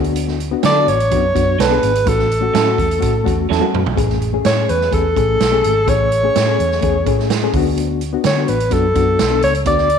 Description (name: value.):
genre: uptempo 1960s-style soul.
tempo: 126 BPM.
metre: 4/4.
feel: straight.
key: A major.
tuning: A4 = 440 Hz.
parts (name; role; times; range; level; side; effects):
reed electric piano; accompaniment; 0.0-9.9 s; A3 to A4; -20 LUFS; left 10 dB; overdrive, fast tremolo.
vintage muted fingered electric bass; bass; 0.0-10.0 s; G#1 to D3; -20 LUFS; equal; none.
swinging big-band drum kit; drums; 0.0-10.0 s; hi-hat, kick drum, snare drum, toms; -21 LUFS; right 5 dB; none.
electric guitar through a small old amp; stabs; 0.6-3.6 s; F#3 to A4; -23 LUFS; right 10 dB; none.
warm alto saxophone; melody; 0.7-10.0 s; A4 to D5; -16 LUFS; equal; none.
room: moderate echo chamber reverb, RT60 1.3 s.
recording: 1960s-style stereo with parts hard left and right.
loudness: -13 LUFS.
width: side -7 dB against mid.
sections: 0.0-4.0 A section; 4.0-10.0 A section.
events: drum fill 3.5-4.0.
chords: 0.0 D6; 2.1 A6; 4.0 Amaj7; 7.5 D6.